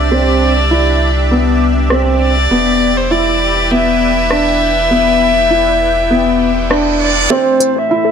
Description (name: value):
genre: piano and strings electronica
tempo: 100 BPM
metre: 4/4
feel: straight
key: E minor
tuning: A4 = 442 Hz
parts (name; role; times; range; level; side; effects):
- warm violin; melody; 0.0-8.1 s; C5 to E5; -15 LUFS; left 1 dB; low-pass filter, ping-pong delay
- lush unison pad; sustained chords; 0.0-8.1 s; A3 to A5; -19 LUFS; right 1 dB; chorus, phaser
- warm sub bass; bass; 0.0-7.3 s; E1 to C2; -18 LUFS; equal; none
- felt-muted upright piano; riff; 0.1-8.1 s; B3 to E4; -15 LUFS; equal; ping-pong delay
- deep house drum kit; drums; 1.9-7.7 s; hi-hat, rim click, toms; -19 LUFS; left 1 dB; high-pass filter on snare, low-pass filter on snare, high-pass filter on toms, low-pass filter on toms, high-pass filter on hats, low-pass filter on hats, high-pass filter on room, low-pass filter on room
- reverse cymbal; sound effects; 6.5-7.3 s; none; -20 LUFS; right 7 dB; none
- warbly dusty pluck; arpeggios; 7.3-8.1 s; A4 to E5; -21 LUFS; left 8 dB; none
room: moderate concert hall reverb, RT60 2.1 s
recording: none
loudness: -10 LUFS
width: side -7 dB against mid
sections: 0.0-7.3 A section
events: reverse cymbal 6.5-7.3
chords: 0.0 Cadd9; 2.5 Em7; 7.3 Am